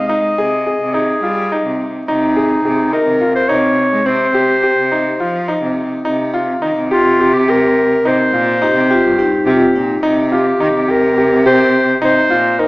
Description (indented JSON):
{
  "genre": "contemporary instrumental, chamber music in an uneven meter",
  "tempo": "211 BPM (eighths)",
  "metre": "7/8",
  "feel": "straight",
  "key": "C phrygian",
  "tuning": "A4 = 440 Hz",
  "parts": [
    { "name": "warm clarinet", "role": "melody", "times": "0.0-12.7 s", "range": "Eb4 to Eb5", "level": "-14 LUFS", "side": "equal", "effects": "none" },
    { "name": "clear concert grand piano", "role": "arpeggios", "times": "0.0-12.7 s", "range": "C4 to Ab4", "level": "-17 LUFS", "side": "equal", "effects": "none" },
    { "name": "rich cello", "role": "bass", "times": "0.0-12.7 s", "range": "G2 to Ab3", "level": "-18 LUFS", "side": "right 1 dB", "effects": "none" },
    { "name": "vibraphone with medium hard mallets", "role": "second line", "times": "8.6-10.1 s", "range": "Eb4 to G4", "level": "-18 LUFS", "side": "left 1 dB", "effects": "none" }
  ],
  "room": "wet recital hall reverb, RT60 1.6 s",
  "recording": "small speaker sound",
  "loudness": "-12 LUFS",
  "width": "side -21 dB against mid",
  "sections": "0.0-6.1 A section; 6.1-12.7 B section",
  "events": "none",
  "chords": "0.0 Ebsus4/C; 4.1 Cm; 6.1 Cm7"
}